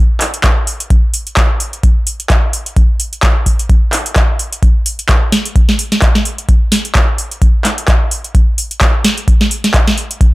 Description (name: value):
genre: house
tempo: 129 BPM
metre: 4/4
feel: swing 56% on 16ths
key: none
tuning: none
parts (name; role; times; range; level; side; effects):
- booming analog drum machine; drums; 0.2-10.3 s; handclaps, hi-hat, snare drum; -15 LUFS; equal; overdrive
- electronic kick drum; drums; 0.4-10.3 s; none; -11 LUFS; equal; overdrive
room: little or no reverb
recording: none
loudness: -10 LUFS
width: side -20 dB against mid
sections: 0.0-10.3 A section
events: none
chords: none